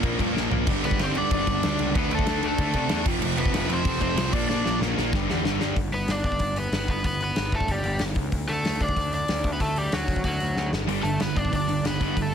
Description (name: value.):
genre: punk rock.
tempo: 188 BPM.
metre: 4/4.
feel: straight.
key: unclear.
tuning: A4 = 440 Hz.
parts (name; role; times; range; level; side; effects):
distorted electric guitar; riff; 0.0-5.8, 10.9-12.3 s; F2 to D4; -29 LUFS; left 15 dB; distortion.
sludgy distorted guitar; riff; 0.0-5.8, 10.9-12.3 s; F2 to D4; -28 LUFS; right 14 dB; overdrive.
fuzz picked electric bass; bass; 0.0-12.3 s; F1 to C3; -30 LUFS; equal; overdrive.
big rock drum kit; drums; 0.0-12.2 s; crash cymbal, hi-hat, kick drum, snare drum, splash cymbal, toms; -27 LUFS; equal; none.
overdriven electric guitar; melody; 0.8-12.3 s; F#3 to D5; -28 LUFS; equal; none.
room: little or no reverb.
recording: dense, heavily limited modern master.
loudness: -22 LUFS.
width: side -8 dB against mid.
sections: 0.0-5.8 A section; 5.8-12.3 B section.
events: drum fill 0.4-0.7, 4.5-5.8, 10.6-10.9.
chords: 0.0 Bb5; 0.7 G; 1.9 D5; 3.1 F5; 4.3 Bb; 5.1 G5; 5.8 G; 8.3 D; 10.7 G.